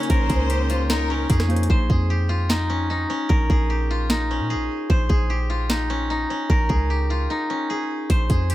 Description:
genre	hip hop, trap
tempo	150 BPM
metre	4/4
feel	half-time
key	Bb dorian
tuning	A4 = 439 Hz
part	steel-string zither	melody	0.0-8.5 s	Db4 to C5	-24 LUFS	left 1 dB	low-pass filter
part	rich studio violin section	second line	0.0-1.3 s	Bb4 to C5	-30 LUFS	left 1 dB	ping-pong delay
part	Celtic harp	accompaniment	0.0-1.7 s	Bb3 to Db5	-33 LUFS	left 1 dB	low-pass filter
part	dark chamber string section	sustained chords	0.0-1.7 s	Db3 to Db4	-33 LUFS	left 2 dB	none
part	trap drum kit	drums	0.0-8.5 s	hi-hat, kick drum, rim click, snare drum	-21 LUFS	equal	none
part	warm 808-style bass	bass	0.1-8.5 s	Bb1 to Bb2	-22 LUFS	equal	none
room	small room reverb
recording	none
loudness	-19 LUFS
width	side -15 dB against mid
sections	0.0-1.7 A section; 1.7-8.5 B section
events	hi-hats muted 1.7-8.1; break 7.3-8.1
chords	0.0 Bbmadd9; 1.7 Bb5; 4.9 Bbm

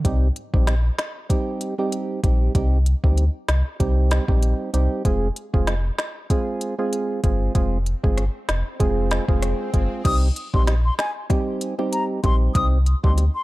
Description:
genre	dancehall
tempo	96 BPM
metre	4/4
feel	swing 56% on 16ths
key	unclear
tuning	A4 = 440 Hz
part	percussive organ stab	accompaniment	0.0-13.2 s	G3 to Ab4	-26 LUFS	right 3 dB	chorus
part	sub bass with octave	bass	0.0-13.3 s	F1 to D2	-20 LUFS	equal	none
part	organic electronic drum kit	drums	0.0-13.3 s	crash cymbal, hi-hat, kick drum, rim click, snare drum	-22 LUFS	equal	overdrive
part	swell	sound effects	7.7-10.1 s	none	-38 LUFS	left 4 dB	none
part	mellow hollow silver concert flute	melody	10.1-13.4 s	Ab5 to Eb6	-27 LUFS	left 2 dB	tape echo
part	bongos	percussion	10.7-13.3 s	none	-33 LUFS	left 7 dB	none
room	digital ambience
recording	dark, warm production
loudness	-19 LUFS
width	side -19 dB against mid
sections	0.0-10.1 A section; 10.1-13.4 B section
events	swell 7.7-10.1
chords	0.1 Cm; 5.0 Fm; 10.1 Cm

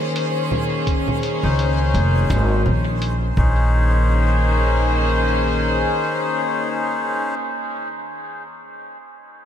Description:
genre	ambient dub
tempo	84 BPM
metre	4/4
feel	swing 58% on 16ths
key	Bb minor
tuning	A4 = 439 Hz
part	warm studio string section	sustained chords	0.0-7.4 s	Eb3 to C5	-24 LUFS	left 1 dB	none
part	backwards swelling texture	texture	0.0-3.7 s	C5	-32 LUFS	left 4 dB	built-in reverb, lush chorus
part	lo-fi sampler-style drum kit	drums	0.2-3.2 s	congas, hi-hat, snare drum	-30 LUFS	right 2 dB	dub echo
part	electronic kick drum	drums	0.9-3.5 s	none	-21 LUFS	equal	none
part	melodica	stabs	1.4-7.3 s	Db4 to C5	-24 LUFS	left 2 dB	dub echo
part	upright bass	bass	1.4-5.8 s	F1 to Db2	-18 LUFS	equal	none
room	moderate cathedral reverb, RT60 4.7 s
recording	dreamy mix soaked in reverb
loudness	-17 LUFS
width	side -9 dB against mid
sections	0.0-3.7 A section; 3.7-6.6 B section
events	none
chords	0.0 Bbm11

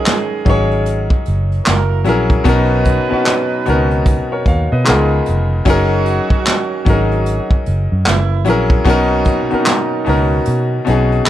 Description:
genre	R&B, neo-soul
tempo	75 BPM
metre	4/4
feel	swing 61% on 16ths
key	unclear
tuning	A4 = 445 Hz
part	clear grand piano	accompaniment	0.0-11.3 s	B2 to E#5	-16 LUFS	left 2 dB	plate reverb
part	mellow horn section	stabs	0.0-11.3 s	A#2 to B4	-23 LUFS	right 8 dB	analog delay, plate reverb
part	vintage brush drum kit	drums	0.1-11.3 s	handclaps, hi-hat, kick drum, snare drum	-15 LUFS	equal	none
part	vintage muted fingered electric bass	bass	0.5-11.2 s	E#1 to B2	-16 LUFS	equal	none
room	light reverb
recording	none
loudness	-12 LUFS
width	side -12 dB against mid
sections	0.0-11.3 A section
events	kick muted 10.5-11.3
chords	0.0 F#69; 1.7 F#7; 2.5 Bmaj9; 4.9 C#13; 5.7 F#69; 8.1 F#7; 8.9 Bmaj9

